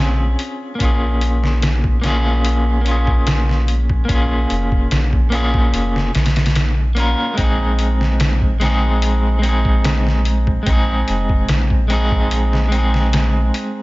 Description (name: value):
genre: trip hop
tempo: 73 BPM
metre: 4/4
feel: straight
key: Bb minor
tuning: A4 = 444 Hz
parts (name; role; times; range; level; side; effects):
- electric guitar at the edge of break-up; accompaniment; 0.0-13.8 s; Ab3 to Bb4; -20 LUFS; equal; tremolo, low-pass filter, tape echo
- soft dub sub bass; bass; 0.0-13.5 s; F1 to Bb1; -17 LUFS; equal; tube saturation
- trip hop sampler-style drum kit; drums; 0.4-13.7 s; hi-hat, kick drum, snare drum; -19 LUFS; equal; none
room: little or no reverb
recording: nothing above 7.7 kHz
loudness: -14 LUFS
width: side -21 dB against mid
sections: 0.0-13.8 A section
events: none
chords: 0.0 Bbm7; 7.4 Ab/Bb